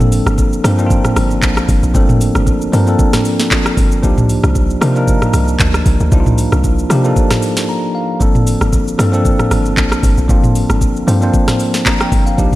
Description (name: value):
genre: amapiano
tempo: 115 BPM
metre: 4/4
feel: swing 55% on 16ths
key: G minor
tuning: A4 = 441 Hz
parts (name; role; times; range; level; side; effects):
- bell-like tine electric piano; accompaniment; 0.0-12.6 s; F3 to Bb5; -16 LUFS; equal; fast stereo tremolo
- deep log drum bass; bass; 0.0-12.6 s; G1 to C3; -15 LUFS; equal; none
- smooth R&B drum kit; drums; 0.0-12.6 s; handclaps, hi-hat, kick drum, rim click, shaker, snare drum, toms; -14 LUFS; equal; none
room: light reverb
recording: none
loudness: -11 LUFS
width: side -16 dB against mid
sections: 0.0-12.6 A section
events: tine electric piano fill 7.4-8.2; break 7.7-8.2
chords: 0.0 Gm11; 4.0 Cm11; 8.2 Gm11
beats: 0.38 0.90 1.43 | 1.95 2.47 2.99 3.51 | 4.03 4.56 5.08 5.60 | 6.12 6.64 7.17 7.69 | 8.21 8.73 9.25 9.77 | 10.29 10.82 11.34 11.86 | 12.38